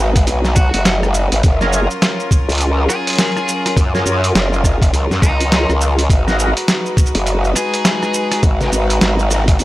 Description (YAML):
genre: glitch hop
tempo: 103 BPM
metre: 4/4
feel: swing 61% on 16ths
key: G# dorian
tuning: A4 = 441 Hz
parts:
  - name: rich chamber string section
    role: sustained chords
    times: 0.0-9.6 s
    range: F#3 to B4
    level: -22 LUFS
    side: left 1 dB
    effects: sidechain pumping
  - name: growl bass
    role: bass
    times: 0.0-9.6 s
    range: F#1 to F#2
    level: -16 LUFS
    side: equal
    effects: chorus
  - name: boom bap sampler-style drum kit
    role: drums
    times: 0.2-9.6 s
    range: hi-hat, rim click, shaker, snare drum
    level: -18 LUFS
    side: right 1 dB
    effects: studio reverb
  - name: electronic kick drum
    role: drums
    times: 0.2-9.6 s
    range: none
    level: -13 LUFS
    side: equal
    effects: studio reverb
  - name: high-gain lead guitar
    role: melody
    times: 0.6-8.4 s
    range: D#4 to G#4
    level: -24 LUFS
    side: left 1 dB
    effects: distortion, tape echo
  - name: overdriven tonewheel organ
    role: stabs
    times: 1.6-6.5 s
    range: B3 to A#4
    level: -25 LUFS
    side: equal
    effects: chorus vibrato, slow rotary speaker, sidechain pumping, tape echo
room: digital ambience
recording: dry, gritty hardware recording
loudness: -13 LUFS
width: side -17 dB against mid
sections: 0.0-9.6 A section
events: none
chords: 0.0 G#m7; 1.4 F#maj7; 6.1 G#m7